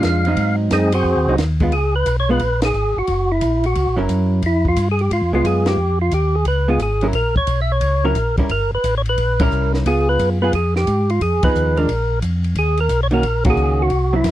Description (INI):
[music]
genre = soul jazz organ trio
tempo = 177 BPM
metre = 4/4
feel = swing 65% on 8ths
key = Db mixolydian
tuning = A4 = 439 Hz
[part]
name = percussive tonewheel organ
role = melody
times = 0.0-14.3 s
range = Ab3 to F5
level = -19 LUFS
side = right 1 dB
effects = slow rotary speaker, overdrive
[part]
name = vintage hollow-body jazz guitar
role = accompaniment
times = 0.0-14.3 s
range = Eb3 to Bb4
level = -20 LUFS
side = right 2 dB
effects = none
[part]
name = mellow tonewheel organ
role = bass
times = 0.0-14.3 s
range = Gb1 to Ab2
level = -19 LUFS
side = equal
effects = chorus vibrato, slow rotary speaker
[part]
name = compact cocktail drum kit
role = drums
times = 0.0-14.3 s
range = hi-hat, kick drum, ride cymbal, snare drum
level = -25 LUFS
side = equal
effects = none
[sound]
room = little or no reverb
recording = dry, close 1970s-style studio recording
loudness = -15 LUFS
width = side -14 dB against mid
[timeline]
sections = 0.0-1.7 A section; 1.7-14.3 B section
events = tonewheel organ solo 0.0-1.7; band accent 2.6, 5.6, 9.3, 11.4, 13.4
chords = 0.4 Ab7; 1.7 Db7(no3); 3.1 Gb7; 4.4 Db7; 7.1 Gb7 (rootless); 8.5 Gdim7; 9.8 Db7; 11.2 Fm7b5; 11.9 Bb5; 12.6 Ebm7